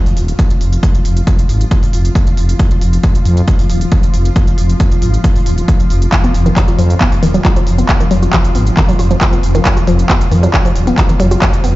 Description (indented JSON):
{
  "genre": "driving peak-time techno",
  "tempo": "136 BPM",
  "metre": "4/4",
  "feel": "straight",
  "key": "unclear",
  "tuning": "A4 = 440 Hz",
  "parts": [
    { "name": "swarming drone", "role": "drone", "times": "0.0-11.8 s", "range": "F3 to F4", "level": "-21 LUFS", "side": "left 2 dB", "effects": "built-in reverb, sidechain pumping" },
    { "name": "techno drum kit", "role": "drums", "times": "0.1-11.7 s", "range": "handclaps, hi-hat", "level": "-20 LUFS", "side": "equal", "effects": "none" },
    { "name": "growling FM bass", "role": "bass", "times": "0.2-11.8 s", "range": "Eb1 to F2", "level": "-13 LUFS", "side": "equal", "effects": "sidechain pumping" },
    { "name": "electronic kick drum", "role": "drums", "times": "0.4-11.5 s", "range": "none", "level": "-12 LUFS", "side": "equal", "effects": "none" },
    { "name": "woody wave-folded pluck", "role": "riff", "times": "6.2-11.7 s", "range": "Eb3 to F4", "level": "-17 LUFS", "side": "equal", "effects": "chorus, sidechain pumping, dub echo" }
  ],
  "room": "little or no reverb",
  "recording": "played on a big sound system in a bare room, stone room reverb, nothing above 7.6 kHz",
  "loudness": "-9 LUFS",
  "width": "side -18 dB against mid",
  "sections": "0.0-11.8 A section",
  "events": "none",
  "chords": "none",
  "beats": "0.39 | 0.83 1.27 1.71 2.15 | 2.60 3.04 3.48 3.92 | 4.36 4.80 5.24 5.68 | 6.12 6.57 7.01 7.45 | 7.89 8.33 8.77 9.21 | 9.65 10.10 10.54 10.98 | 11.42"
}